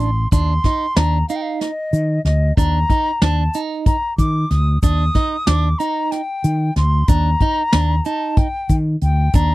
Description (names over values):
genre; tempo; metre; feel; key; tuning
progressive instrumental, band music in an uneven meter; 186 BPM (eighths); 7/8; straight; Eb lydian; A4 = 440 Hz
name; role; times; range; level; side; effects
hollow silver concert flute; melody; 0.0-9.5 s; Eb5 to Eb6; -22 LUFS; left 1 dB; none
clean electric guitar; arpeggios; 0.0-9.5 s; D4 to Eb4; -24 LUFS; right 7 dB; harmonic tremolo
mellow fretless electric bass; bass; 0.0-9.5 s; A1 to Eb3; -16 LUFS; equal; none
soft brush drum kit; drums; 0.0-9.5 s; hi-hat, kick drum, snare drum; -17 LUFS; equal; none
egg shaker; percussion; 0.3-9.5 s; none; -37 LUFS; left 9 dB; none
room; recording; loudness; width
little or no reverb; dry, close 1970s-style studio recording; -15 LUFS; side -18 dB against mid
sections
0.3-9.5 A section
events
none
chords
0.3 Ebmaj7(no3)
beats
0.01 | 0.33 0.65 0.97 1.29 1.61 1.94 2.26 | 2.58 2.90 3.22 3.55 3.87 4.19 4.51 | 4.83 5.16 5.48 5.80 6.12 6.45 6.77 | 7.09 7.41 7.74 8.06 8.38 8.70 9.03 | 9.35